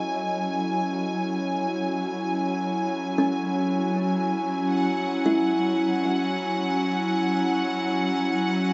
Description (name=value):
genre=ambient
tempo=free time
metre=none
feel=none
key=F# dorian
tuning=A4 = 440 Hz
part: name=airy breathy pad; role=sustained chords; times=0.0-8.7 s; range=F#3 to G#5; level=-29 LUFS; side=equal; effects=chorus
part: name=kalimba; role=arpeggios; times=0.0-8.7 s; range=C#4 to D#5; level=-32 LUFS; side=equal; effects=diffuse ambient delay
part: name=bowed-like drone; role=drone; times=0.0-8.7 s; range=F#3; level=-33 LUFS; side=equal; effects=built-in reverb
part: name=clear studio violin section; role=texture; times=0.0-8.7 s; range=F#5 to G#5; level=-33 LUFS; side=equal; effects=none
room=wet huge ambient reverb, RT60 8.3 s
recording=nothing above 7.6 kHz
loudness=-25 LUFS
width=mono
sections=0.0-8.7 A section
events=none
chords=0.0 F#m9; 4.7 C#m/F#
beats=free time